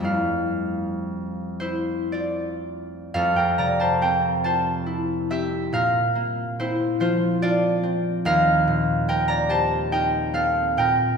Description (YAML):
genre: classical, solo harp piece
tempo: 38-49 BPM (dotted quarters)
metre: 6/8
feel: rubato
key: F major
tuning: A4 = 440 Hz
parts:
  - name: concert harp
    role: solo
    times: 0.0-11.2 s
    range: Eb2 to Bb5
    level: -20 LUFS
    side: equal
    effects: none
room: wet concert hall reverb, RT60 2.3 s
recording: recorded in a church or concert hall, faint mains hum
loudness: -20 LUFS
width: side -6 dB against mid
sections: 0.0-3.1 A section; 3.1-11.2 B section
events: none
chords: 0.1 Fmaj9; 3.1 Fmaj7; 5.7 Bbadd9; 8.3 Eb69